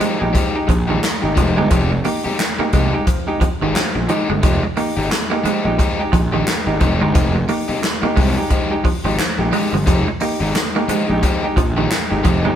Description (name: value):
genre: funk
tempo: 88 BPM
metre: 4/4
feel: swing 60% on 16ths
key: F minor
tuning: A4 = 440 Hz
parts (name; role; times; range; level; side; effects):
- crunchy overdriven guitar; accompaniment; 0.0-12.5 s; Ab3 to G4; -22 LUFS; left 2 dB; none
- clean electric guitar; riff; 0.0-12.5 s; Eb3 to Bb3; -23 LUFS; right 5 dB; none
- overdriven clav; stabs; 0.0-12.6 s; F3 to G4; -24 LUFS; equal; none
- fuzz picked electric bass; bass; 0.0-12.6 s; F1 to C2; -21 LUFS; equal; overdrive
- swinging big-band drum kit; drums; 0.0-12.4 s; handclaps, hi-hat, kick drum, snare drum; -20 LUFS; equal; none
room: moderate stone room reverb, RT60 1.1 s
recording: band playing live in one room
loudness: -15 LUFS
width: side -10 dB against mid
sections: 0.0-12.6 A section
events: none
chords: 0.0 Fm9